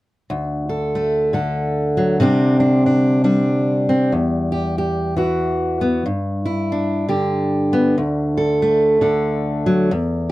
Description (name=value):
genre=folk, solo fingerstyle acoustic guitar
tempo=94 BPM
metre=3/4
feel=swing 60% on 8ths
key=D mixolydian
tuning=A4 = 440 Hz
part: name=fingerpicked steel-string acoustic guitar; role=solo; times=0.3-10.3 s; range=D2 to A4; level=-16 LUFS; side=equal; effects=none
room=light reverb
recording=dry, close 1970s-style studio recording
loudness=-16 LUFS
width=side -17 dB against mid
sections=0.3-10.3 A section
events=none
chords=0.3 D; 2.2 Csus2; 4.1 Em; 6.1 G5; 8.0 D